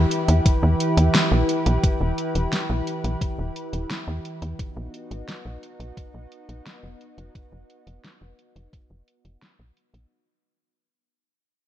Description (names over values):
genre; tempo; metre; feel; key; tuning
synthwave; 87 BPM; 4/4; straight; unclear; A4 = 435 Hz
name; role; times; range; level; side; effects
lush unison pad; sustained chords; 0.0-10.1 s; E3 to B4; -26 LUFS; equal; chorus
tight sequencer bass; bass; 0.0-10.1 s; E1 to E2; -21 LUFS; equal; none
pop drum kit; drums; 0.1-10.1 s; hi-hat, snare drum; -26 LUFS; equal; low-pass filter on hats, low-pass filter on snare, low-pass filter on toms, gated reverb
electronic kick drum; drums; 0.5-8.9 s; none; -22 LUFS; equal; overdrive
room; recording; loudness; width
little or no reverb; none; -20 LUFS; side -12 dB against mid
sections
0.0-10.1 A section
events
fade-out 0.0-10.1; filter sweep on analog synth bass 0.0-10.1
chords
0.0 Em; 4.6 B